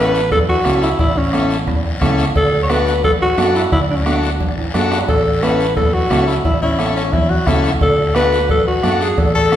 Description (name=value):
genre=latin, cumbia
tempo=176 BPM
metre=4/4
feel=straight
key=A major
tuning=A4 = 439 Hz
part: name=raspy alto saxophone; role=melody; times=0.0-9.6 s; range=C#4 to C#5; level=-17 LUFS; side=equal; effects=none
part: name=combo organ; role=accompaniment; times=0.0-9.6 s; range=C#4 to A4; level=-22 LUFS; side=left 2 dB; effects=none
part: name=fingered electric bass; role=bass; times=0.0-9.6 s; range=A1 to F#2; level=-20 LUFS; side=equal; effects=none
part: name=guiro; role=percussion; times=0.1-9.6 s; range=none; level=-30 LUFS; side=left 3 dB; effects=none
part: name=bombo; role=percussion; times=0.3-9.6 s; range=none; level=-20 LUFS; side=equal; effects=none
part: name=congas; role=percussion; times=0.3-9.6 s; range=none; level=-26 LUFS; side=right 4 dB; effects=none
part: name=cowbell and timbales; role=percussion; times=0.3-9.3 s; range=none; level=-28 LUFS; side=right 3 dB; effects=none
part: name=clear tenor saxophone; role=second line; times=6.6-9.6 s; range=C#4 to A4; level=-19 LUFS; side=left 3 dB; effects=none
room=wet recital hall reverb, RT60 1.3 s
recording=recorded in a church or concert hall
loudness=-13 LUFS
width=side -11 dB against mid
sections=0.0-9.6 A section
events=drum fill 4.6-5.1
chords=0.0 A; 2.4 D; 5.1 A; 7.8 D6